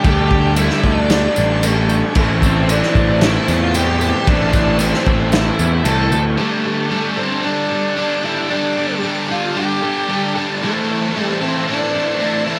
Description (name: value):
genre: rock, shoegaze and dream pop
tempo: 113 BPM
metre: 4/4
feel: straight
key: unclear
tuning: A4 = 442 Hz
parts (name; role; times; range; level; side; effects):
- octave-fuzz lead guitar; melody; 0.0-12.6 s; A3 to A4; -23 LUFS; equal; distortion, slapback echo
- phased string machine; sustained chords; 0.0-12.6 s; A4 to E6; -33 LUFS; equal; ensemble chorus, phaser
- fingerpicked twelve-string acoustic guitar; arpeggios; 0.0-12.6 s; E3 to E4; -31 LUFS; equal; none
- biting overdriven guitar; riff; 0.0-12.6 s; A2 to A4; -25 LUFS; equal; reverse reverb
- crunchy overdriven guitar; riff; 0.0-12.6 s; A2 to A4; -25 LUFS; equal; analog chorus
- raw garage guitar; riff; 0.0-6.4 s; A2 to A4; -27 LUFS; equal; overdrive
- loose indie drum kit; drums; 0.0-6.0 s; crash cymbal, kick drum, snare drum; -21 LUFS; equal; none
- tambourine; percussion; 0.0-6.2 s; none; -33 LUFS; equal; none
- fuzz picked electric bass; bass; 0.1-6.4 s; A1 to E2; -20 LUFS; equal; overdrive
room: light reverb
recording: none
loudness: -17 LUFS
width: mono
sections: 0.0-6.4 A section; 6.4-12.6 B section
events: none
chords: 0.0 Dsus4; 2.2 Am; 6.4 Dsus4; 10.6 Am